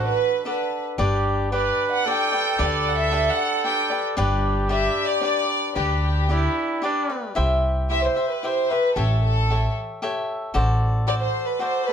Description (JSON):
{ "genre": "mexican folk, mariachi", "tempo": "113 BPM", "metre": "3/4", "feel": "straight", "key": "G major, C major from 7.4 s", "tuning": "A4 = 440 Hz", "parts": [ { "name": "warm studio violin section", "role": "melody", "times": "0.0-11.9 s", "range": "G4 to G5", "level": "-23 LUFS", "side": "equal", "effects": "none" }, { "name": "warm trumpet", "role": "second line", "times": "0.0-7.3 s", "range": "D4 to B4", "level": "-26 LUFS", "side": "right 5 dB", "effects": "none" }, { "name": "cavaquinho", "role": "accompaniment", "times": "0.0-11.9 s", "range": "D4 to F#5", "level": "-26 LUFS", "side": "left 3 dB", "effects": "none" }, { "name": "upright bass", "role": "bass", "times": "0.0-11.2 s", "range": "G1 to D2", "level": "-23 LUFS", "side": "equal", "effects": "none" } ], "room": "moderate studio ambience, RT60 0.5 s", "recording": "none", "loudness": "-20 LUFS", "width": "side -8 dB against mid", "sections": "0.0-7.4 A section; 7.4-11.9 B section", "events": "none", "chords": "0.0 D; 1.0 G; 7.4 C; 9.0 A7; 10.6 D7/A", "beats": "0.45 | 0.99 1.53 2.06 | 2.60 3.12 3.65 | 4.18 4.71 5.24 | 5.77 6.30 6.84 | 7.37 7.91 8.44 | 8.97 9.50 10.02 | 10.55 11.08 11.61" }